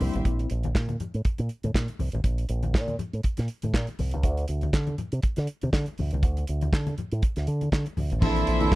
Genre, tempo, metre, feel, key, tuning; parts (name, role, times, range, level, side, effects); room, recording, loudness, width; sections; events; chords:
disco; 120 BPM; 4/4; swing 56% on 16ths; A4 = 436 Hz
mellow tine electric piano; accompaniment; 0.0-0.5, 8.2-8.8 s; E3 to A4; -28 LUFS; left 3 dB; fast stereo tremolo
clear studio string section; sustained chords; 0.0-0.2, 8.2-8.8 s; G4 to C6; -33 LUFS; right 2 dB
fingered electric bass with an envelope filter; bass; 0.0-8.8 s; A1 to D3; -27 LUFS; equal
warm soul drum kit; drums; 0.0-8.8 s; crash cymbal, handclaps, hi-hat, kick drum, snare drum; -26 LUFS; right 1 dB
congas; percussion; 0.0-8.7 s; -34 LUFS; left 3 dB
clear studio string section; second line; 8.2-8.8 s; E4 to E5; -26 LUFS; right 3 dB
studio ambience; dry, close 1970s-style studio recording; -24 LUFS; side -18 dB against mid
0.3-8.2 A section
0.3 Bbsus2; 4.2 D5; 8.2 Bbmaj9#11